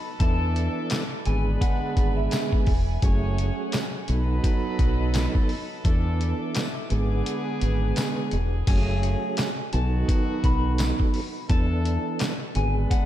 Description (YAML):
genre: hip hop, boom-bap hip-hop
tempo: 85 BPM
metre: 4/4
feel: swing 59% on 16ths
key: unclear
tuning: A4 = 439 Hz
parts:
  - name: electric guitar at the edge of break-up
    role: melody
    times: 0.0-3.0, 8.7-13.1 s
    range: E5 to B5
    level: -34 LUFS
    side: left 2 dB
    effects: wide subtle chorus, high-pass filter, low-pass filter, ping-pong delay
  - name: warm studio string section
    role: sustained chords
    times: 0.0-8.7 s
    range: A4 to D6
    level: -38 LUFS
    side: left 1 dB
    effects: high-pass filter, low-pass filter
  - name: mellow tonewheel organ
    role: accompaniment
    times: 0.2-13.1 s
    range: D3 to A4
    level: -29 LUFS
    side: right 4 dB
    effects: chorus vibrato, slow rotary speaker, cassette tape, high-pass filter, low-pass filter
  - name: clear horn section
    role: stabs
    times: 0.2-13.1 s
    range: C#3 to C#5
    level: -35 LUFS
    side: left 2 dB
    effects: high-pass filter, low-pass filter, ping-pong delay
  - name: deep dub fingered electric bass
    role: bass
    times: 0.2-12.9 s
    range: E1 to E2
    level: -24 LUFS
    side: equal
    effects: none
  - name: trip hop sampler-style drum kit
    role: drums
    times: 0.2-13.1 s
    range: crash cymbal, handclaps, hi-hat, kick drum, snare drum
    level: -25 LUFS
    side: equal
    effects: none
  - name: tambourine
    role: percussion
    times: 0.9-12.4 s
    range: none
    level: -43 LUFS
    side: left 7 dB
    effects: none
room: light reverb, digital ambience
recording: none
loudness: -22 LUFS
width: side -12 dB against mid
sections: 0.0-8.7 A section; 8.7-13.1 A section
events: kick muted 7.3-8.7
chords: 0.2 E7sus4; 1.3 G#dim; 3.0 F#madd9; 4.1 B7; 5.8 E7sus4; 6.9 G#dim; 8.7 F#madd9; 9.7 B7; 11.5 E7sus4; 12.6 G#dim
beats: | 0.20 0.91 1.61 2.32 | 3.03 3.73 4.44 5.14 | 5.85 6.55 7.26 7.97 | 8.67 9.38 10.09 10.79 | 11.50 12.20 12.91